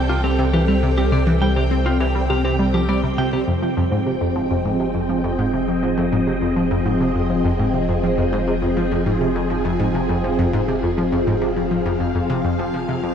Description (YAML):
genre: ambient, sequencer-driven space music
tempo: 102 BPM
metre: 4/4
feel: straight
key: F minor from 3.5 s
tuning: A4 = 440 Hz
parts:
  - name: phased string machine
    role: sustained chords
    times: 0.0-13.1 s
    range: C3 to G5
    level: -21 LUFS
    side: equal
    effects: ensemble chorus, phaser
  - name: warm sub bass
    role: bass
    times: 0.0-13.1 s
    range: F1 to C2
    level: -25 LUFS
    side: equal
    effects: none
  - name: clean electric guitar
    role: arpeggios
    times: 0.1-3.4 s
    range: F4 to G5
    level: -28 LUFS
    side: equal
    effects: auto-pan, analog delay
  - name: analog pluck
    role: riff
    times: 0.1-13.1 s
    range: F2 to C4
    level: -21 LUFS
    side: equal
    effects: chorus, analog delay
room: wet cathedral reverb, RT60 7.0 s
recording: in a vast, echoing space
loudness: -17 LUFS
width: side -8 dB against mid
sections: 0.0-3.5 A section; 3.5-13.1 B section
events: none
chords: 0.0 Csus2; 3.5 Fm7